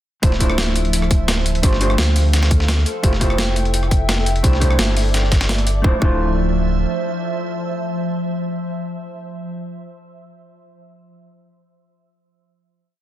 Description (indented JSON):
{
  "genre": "liquid drum and bass",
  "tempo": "171 BPM",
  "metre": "4/4",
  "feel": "straight",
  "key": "D minor",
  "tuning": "A4 = 440 Hz",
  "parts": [
    { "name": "hollow-body jazz guitar", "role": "accompaniment", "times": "0.2-9.5 s", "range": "A3 to C5", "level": "-24 LUFS", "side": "equal", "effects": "tape echo" },
    { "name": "glassy FM pad", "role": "sustained chords", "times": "0.7-9.3 s", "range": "F3 to G5", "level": "-25 LUFS", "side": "equal", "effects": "ensemble chorus, built-in reverb, sidechain pumping" },
    { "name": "sub bass with octave", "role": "bass", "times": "0.2-6.9 s", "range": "D1 to D2", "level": "-18 LUFS", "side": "equal", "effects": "none" },
    { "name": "breakbeat sampler-style drum kit", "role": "drums", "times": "0.2-5.7 s", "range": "hi-hat, rim click, snare drum", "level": "-23 LUFS", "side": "equal", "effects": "overdrive" },
    { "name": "dusty soul sampler-style drum kit", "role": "drums", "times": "0.2-5.8 s", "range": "hi-hat, snare drum", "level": "-26 LUFS", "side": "equal", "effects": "high-pass filter on hats, high-pass filter on snare" },
    { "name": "electronic kick drum", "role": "drums", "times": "0.2-6.1 s", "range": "none", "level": "-16 LUFS", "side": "equal", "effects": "none" }
  ],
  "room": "light reverb, digital ambience",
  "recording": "dense, heavily limited modern master",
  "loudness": "-16 LUFS",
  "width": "side -13 dB against mid",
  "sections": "0.2-5.8 drop; 5.8-8.7 final chord",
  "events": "drop 0.2-5.8",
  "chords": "0.2 Dm9; 1.6 G9sus4; 2.9 Fmaj9; 4.4 C6; 5.8 Dm9"
}